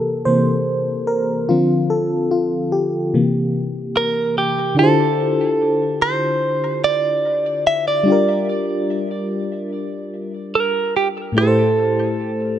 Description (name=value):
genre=R&B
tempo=73 BPM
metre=4/4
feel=straight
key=unclear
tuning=A4 = 441 Hz
part: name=FM electric piano with tremolo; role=accompaniment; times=0.0-12.6 s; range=A2 to C5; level=-19 LUFS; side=left 1 dB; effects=none
part: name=direct-recorded clean electric guitar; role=melody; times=4.0-12.6 s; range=G4 to E5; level=-18 LUFS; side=right 2 dB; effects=phaser, tape echo
room=light reverb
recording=none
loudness=-16 LUFS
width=side -10 dB against mid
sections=0.0-4.8 A section; 4.8-12.6 B section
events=FM electric piano solo 0.0-4.8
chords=0.0 C7; 1.5 Dm7; 3.1 C7; 4.8 Dm11; 8.1 Gm7; 11.4 Am7